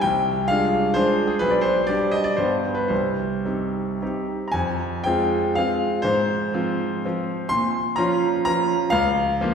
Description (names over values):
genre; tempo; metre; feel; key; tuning
classical, romantic triple-time dance for piano with dotted rhythms; 103-136 BPM; 3/4; rubato; C minor, F minor from 4.5 s; A4 = 440 Hz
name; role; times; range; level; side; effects
bright grand piano; solo; 0.0-9.5 s; B1 to C6; -20 LUFS; equal; none
room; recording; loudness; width
wet concert hall reverb, RT60 1.7 s; heard from further back in the room; -20 LUFS; side -6 dB against mid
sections
0.0-4.5 A section; 4.5-9.5 B section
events
none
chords
0.0 Dm7b5/C; 1.4 G/B; 2.4 G; 2.9 Cm; 4.5 Fm; 6.0 Fm/Ab; 7.5 Bbm; 8.9 Bbm/Db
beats
| 0.05 0.51 0.97 | 1.42 1.90 2.40 | 2.91 3.46 4.02 | 4.54 5.06 5.57 | 6.05 6.54 7.04 | 7.50 7.98 8.46 | 8.92 9.40